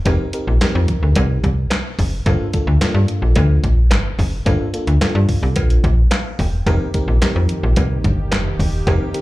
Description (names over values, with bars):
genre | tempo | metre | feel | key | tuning
early-eighties boogie funk | 109 BPM | 4/4 | straight | G minor | A4 = 440 Hz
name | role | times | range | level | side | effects
FM electric piano | accompaniment | 0.1-9.2 s | A3 to G5 | -25 LUFS | left 1 dB | chorus, slapback echo
slap-like FM bass | bass | 0.1-9.0 s | E1 to G2 | -15 LUFS | equal | none
crisp 8-bit digital drum machine | drums | 0.1-9.2 s | handclaps, hi-hat, kick drum, snare drum | -21 LUFS | equal | overdrive
cowbell | percussion | 0.1-9.0 s | none | -29 LUFS | right 1 dB | slapback echo
brassy analog pad | sustained chords | 6.7-9.2 s | Eb3 to G4 | -28 LUFS | equal | chorus
room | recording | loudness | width
little or no reverb | live gig heard through the venue's PA, club reverb | -14 LUFS | side -18 dB against mid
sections
0.0-9.2 A section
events
FM electric piano fill 5.8-6.7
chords
0.0 F9sus4; 2.3 Gm9; 6.7 F9sus4